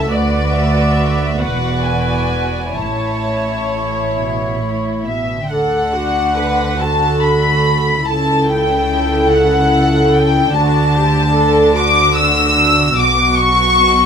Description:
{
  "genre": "classical, slow romantic movement for string orchestra",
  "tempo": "43-50 BPM (dotted quarters)",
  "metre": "6/8",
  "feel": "rubato",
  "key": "A major, D major from 5.5 s",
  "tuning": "A4 = 440 Hz",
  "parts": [
    { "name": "warm chamber violin section", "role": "melody", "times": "0.0-14.1 s", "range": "D5 to E6", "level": "-19 LUFS", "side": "left 2 dB", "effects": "none" },
    { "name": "warm studio violin section", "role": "second line", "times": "0.0-14.1 s", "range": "E4 to E6", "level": "-18 LUFS", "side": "left 2 dB", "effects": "none" },
    { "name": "rich studio viola section", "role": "accompaniment", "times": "0.0-14.1 s", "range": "D4 to E5", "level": "-18 LUFS", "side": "right 1 dB", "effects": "none" },
    { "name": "dark studio cello section", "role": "bass", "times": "0.0-14.1 s", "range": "C#2 to D3", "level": "-20 LUFS", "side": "equal", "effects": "none" },
    { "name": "dark studio double bass section", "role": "bass", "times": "0.0-14.1 s", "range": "E1 to D2", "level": "-20 LUFS", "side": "right 2 dB", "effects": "none" }
  ],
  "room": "light reverb",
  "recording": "minimal, uncompressed stereo recording",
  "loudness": "-12 LUFS",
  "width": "side -7 dB against mid",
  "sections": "0.0-5.5 A section; 5.5-14.1 B section",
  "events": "none",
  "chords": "0.1 Bm/D; 1.4 E9; 2.8 A; 5.5 D; 8.1 A7/C#; 10.6 D; 13.0 B5",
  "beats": "| 0.12 1.39 | 2.76 4.14 | 5.51 6.80 | 8.09 9.34 | 10.57 11.78 | 12.98"
}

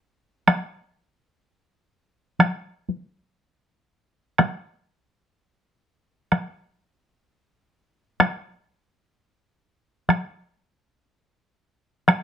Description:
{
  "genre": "japanese traditional",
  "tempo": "free time",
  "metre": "none",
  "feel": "none",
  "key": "none",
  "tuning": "none",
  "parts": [
    { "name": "taiko ensemble", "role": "percussion", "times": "0.5-12.2 s", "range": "none", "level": "-17 LUFS", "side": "equal", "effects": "none" }
  ],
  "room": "light reverb",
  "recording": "none",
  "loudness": "-22 LUFS",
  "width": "side -8 dB against mid",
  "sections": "0.0-4.4 A section; 4.4-12.2 A section",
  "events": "none",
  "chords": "none",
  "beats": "free time"
}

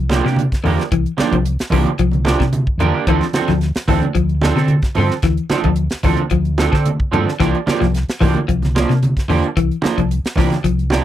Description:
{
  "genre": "afrobeat",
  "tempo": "111 BPM",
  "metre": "4/4",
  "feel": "straight",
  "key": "C mixolydian",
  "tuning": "A4 = 440 Hz",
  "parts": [
    { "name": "clean electric guitar", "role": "arpeggios", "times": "0.0-10.8 s", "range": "C3 to F3", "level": "-20 LUFS", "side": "left 7 dB", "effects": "none" },
    { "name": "fingered electric bass", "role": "bass", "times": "0.0-11.0 s", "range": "C2 to D3", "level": "-18 LUFS", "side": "equal", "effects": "none" },
    { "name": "electric guitar at the edge of break-up", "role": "stabs", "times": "0.1-11.0 s", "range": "F3 to A4", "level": "-19 LUFS", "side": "right 6 dB", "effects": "lush chorus" },
    { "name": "tight funk drum kit", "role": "drums", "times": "0.1-11.0 s", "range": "hi-hat, kick drum, snare drum", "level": "-21 LUFS", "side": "equal", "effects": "none" },
    { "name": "congas", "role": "percussion", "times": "0.1-11.0 s", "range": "none", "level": "-22 LUFS", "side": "right 3 dB", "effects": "none" }
  ],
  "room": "little or no reverb",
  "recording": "dry, close 1970s-style studio recording",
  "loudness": "-14 LUFS",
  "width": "side -12 dB against mid",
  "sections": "0.0-11.0 A section",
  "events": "none",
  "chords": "0.0 C9sus4; 3.1 Dm7; 7.4 C9sus4",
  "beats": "0.38 | 0.92 1.46 2.00 2.54 | 3.08 3.62 4.16 4.70 | 5.24 5.78 6.32 6.86 | 7.40 7.94 8.48 9.02 | 9.56 10.10 10.64"
}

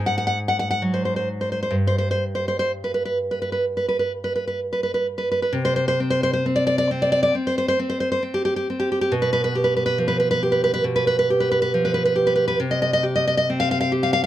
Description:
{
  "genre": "romantic piece for solo classical guitar",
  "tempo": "62-73 BPM",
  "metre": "4/4",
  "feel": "rubato",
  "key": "unclear",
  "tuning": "A4 = 439 Hz",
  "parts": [
    { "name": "nylon-string guitar", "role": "solo", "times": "0.0-14.3 s", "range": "G2 to Gb5", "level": "-19 LUFS", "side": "equal", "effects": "none" }
  ],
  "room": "little or no reverb",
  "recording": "close, detailed microphones",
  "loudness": "-19 LUFS",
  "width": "side -12 dB against mid",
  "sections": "0.0-5.5 A section; 5.5-14.3 B section",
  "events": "none",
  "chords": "0.0 Ab7; 1.8 N.C.; 9.1 G7/B; 12.6 C5",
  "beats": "0.82 | 1.75 2.71 3.65 4.59 | 5.52 6.44 7.34 8.21 | 9.12 9.98 10.84 11.71 | 12.58 13.47"
}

